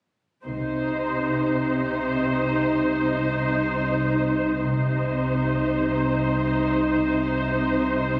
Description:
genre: cinematic, suspense film score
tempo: free time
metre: none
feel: none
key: C minor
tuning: A4 = 440 Hz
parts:
  - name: muted studio viola section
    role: accompaniment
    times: 0.4-8.2 s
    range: Eb4 to C5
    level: -26 LUFS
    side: equal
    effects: none
  - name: deep rumbling drone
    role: drone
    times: 1.3-8.2 s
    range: C2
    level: -31 LUFS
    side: equal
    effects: built-in reverb
  - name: muted studio cello section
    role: bass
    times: 0.5-8.2 s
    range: C3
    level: -30 LUFS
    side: equal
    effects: none
  - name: muted studio double bass section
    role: bass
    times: 0.5-5.4 s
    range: C2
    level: -37 LUFS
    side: equal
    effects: none
room: moderate concert hall reverb, RT60 2.4 s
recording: recorded on a phone in the room, studio reverb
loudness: -24 LUFS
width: mono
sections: 0.5-8.2 A section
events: none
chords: 0.5 Cm

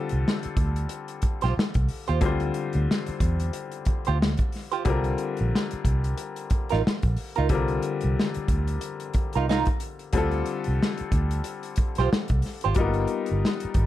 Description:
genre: R&B, neo-soul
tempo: 91 BPM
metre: 4/4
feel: swing 58% on 16ths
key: unclear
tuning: A4 = 441 Hz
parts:
  - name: clear baby grand piano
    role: accompaniment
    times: 0.0-13.9 s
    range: D3 to C5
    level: -30 LUFS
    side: left 5 dB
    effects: none
  - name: vintage muted fingered electric bass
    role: bass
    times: 0.1-13.9 s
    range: G1 to E2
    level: -25 LUFS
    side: equal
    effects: none
  - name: warm soul drum kit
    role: drums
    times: 0.1-13.9 s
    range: hi-hat, kick drum, snare drum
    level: -26 LUFS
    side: equal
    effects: none
  - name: archtop guitar, miked and amplified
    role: second line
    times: 1.4-12.7 s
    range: Eb4 to C5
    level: -27 LUFS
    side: right 8 dB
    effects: wah
room: light reverb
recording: dark, warm production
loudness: -23 LUFS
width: side -14 dB against mid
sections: 0.0-13.9 A section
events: none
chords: 0.0 Dm11; 4.9 C9sus4; 10.1 Dm7; 12.8 G7alt

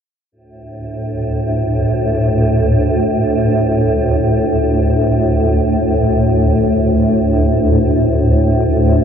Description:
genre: ambient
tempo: free time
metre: none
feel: none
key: unclear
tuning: A4 = 439 Hz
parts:
  - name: swarming drone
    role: drone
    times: 0.8-9.0 s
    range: D2 to A2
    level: -12 LUFS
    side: equal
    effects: built-in reverb
room: wet cathedral reverb, RT60 6.7 s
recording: none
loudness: -12 LUFS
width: side -8 dB against mid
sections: 0.3-9.0 A section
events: none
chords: 0.3 D5

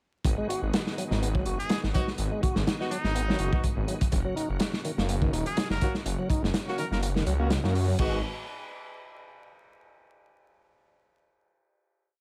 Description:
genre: breakbeat, breaks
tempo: 124 BPM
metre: 4/4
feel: swing 54% on 16ths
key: G# minor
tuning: A4 = 443 Hz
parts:
  - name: bright tonewheel organ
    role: sustained chords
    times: 0.2-8.2 s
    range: C#3 to F#4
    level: -41 LUFS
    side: equal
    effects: chorus vibrato, slow rotary speaker, sidechain pumping
  - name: detuned saw bass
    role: bass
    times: 0.2-8.2 s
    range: D#1 to F#2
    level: -32 LUFS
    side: equal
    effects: tube saturation
  - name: crunchy breakbeat drum kit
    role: drums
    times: 0.2-8.1 s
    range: crash cymbal, hi-hat, kick drum, snare drum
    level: -31 LUFS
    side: equal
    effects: none
  - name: tonewheel organ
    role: riff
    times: 0.4-8.2 s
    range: D#3 to F#4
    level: -36 LUFS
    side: equal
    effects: overdrive, stopped rotary speaker, tape echo
  - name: trumpet with straight mute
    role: melody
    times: 1.6-7.0 s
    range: D#4 to A#4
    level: -38 LUFS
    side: equal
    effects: small speaker sound, vintage 12-bit sampler grit, tape echo
  - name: warm horn section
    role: stabs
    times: 1.9-8.2 s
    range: A#3 to F#4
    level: -37 LUFS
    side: equal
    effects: tape echo
room: little or no reverb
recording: vinyl crackle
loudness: -28 LUFS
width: mono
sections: 0.2-8.0 drop; 8.0-9.9 final chord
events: drop 0.2-8.0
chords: 0.2 G#m7; 4.1 F#; 8.0 G#m7

